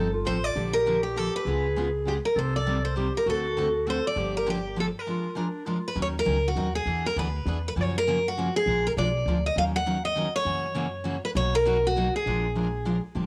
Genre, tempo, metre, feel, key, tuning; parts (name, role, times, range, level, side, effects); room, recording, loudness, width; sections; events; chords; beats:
acoustic string swing (jazz manouche); 200 BPM; 3/4; swing 57% on 8ths; Eb minor from 6.0 s; A4 = 440 Hz
picked steel-string acoustic guitar; melody; 0.0-13.0 s; Gb4 to Gb5; -29 LUFS; equal; cassette tape
growling clarinet; second line; 0.0-6.0 s; D4 to A4; -35 LUFS; equal
picked steel-string acoustic guitar; accompaniment; 0.0-13.3 s; B2 to Bb4; -33 LUFS; equal
upright bass; bass; 0.0-13.3 s; G1 to Gb2; -33 LUFS; equal
light reverb; home recording on cassette; -26 LUFS; mono
0.0-6.0 A section; 6.0-13.2 B section
break 5.1-6.0
0.0 F7; 0.6 Bbmaj7; 1.5 C#7; 2.4 Cm7; 3.3 D7; 4.2 Gm7; 5.1 Bb7; 6.0 Ebm7; 6.9 E7; 7.8 Gbmaj7; 8.7 Bb7; 9.6 Ebm7; 10.5 Gb7; 11.4 Bmaj7; 12.3 Bb7
0.26 | 0.56 0.86 1.16 | 1.46 1.76 2.06 | 2.36 2.66 2.96 | 3.27 3.56 3.87 | 4.17 4.47 4.77 | 5.07 5.37 5.67 | 5.96 6.26 6.57 | 6.86 7.16 7.46 | 7.76 8.06 8.36 | 8.66 8.96 9.26 | 9.56 9.86 10.16 | 10.46 10.76 11.06 | 11.36 11.66 11.96 | 12.26 12.56 12.86 | 13.16